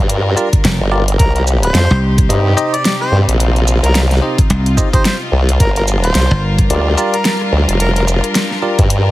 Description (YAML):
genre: glitch hop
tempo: 109 BPM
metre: 4/4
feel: swing 58% on 16ths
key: G minor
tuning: A4 = 440 Hz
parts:
  - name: rich chamber string section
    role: sustained chords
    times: 0.0-9.1 s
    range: C3 to Bb4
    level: -21 LUFS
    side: left 1 dB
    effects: sidechain pumping
  - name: formant-sweep wobble bass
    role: bass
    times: 0.0-9.1 s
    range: F1 to G2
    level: -13 LUFS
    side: equal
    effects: chorus, tube saturation
  - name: dubstep drum kit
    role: drums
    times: 0.1-9.0 s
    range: hi-hat, rim click, shaker, snare drum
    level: -18 LUFS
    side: equal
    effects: overdrive
  - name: bell-like tine electric piano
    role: stabs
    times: 0.4-8.8 s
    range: Eb4 to Eb5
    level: -20 LUFS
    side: equal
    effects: medium stereo tremolo, sidechain pumping, ping-pong delay
  - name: electronic kick drum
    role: drums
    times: 0.5-8.9 s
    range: none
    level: -12 LUFS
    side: equal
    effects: overdrive
  - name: dry thumbed slap bass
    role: bass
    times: 0.6-6.7 s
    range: F1 to C2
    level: -13 LUFS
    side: equal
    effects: none
  - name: mellow harmonica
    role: melody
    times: 1.2-8.0 s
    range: Bb4 to D5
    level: -22 LUFS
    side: equal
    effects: ping-pong delay
room: digital ambience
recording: heavily compressed radio sound, multiband compression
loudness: -11 LUFS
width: side -16 dB against mid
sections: 0.0-9.1 A section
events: none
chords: 0.0 Gm7; 1.2 Cm; 5.6 Gm7